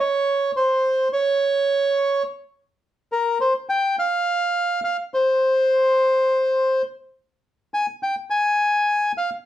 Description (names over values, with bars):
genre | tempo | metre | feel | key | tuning
tango | 104 BPM | 4/4 | rubato | unclear | A4 = 440 Hz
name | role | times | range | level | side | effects
bandoneon | solo | 0.0-9.3 s | Bb4 to Ab5 | -18 LUFS | equal | none
room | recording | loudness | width
wet studio reverb, RT60 0.5 s | heard from further back in the room | -18 LUFS | side -12 dB against mid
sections
0.0-9.5 A section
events
none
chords
none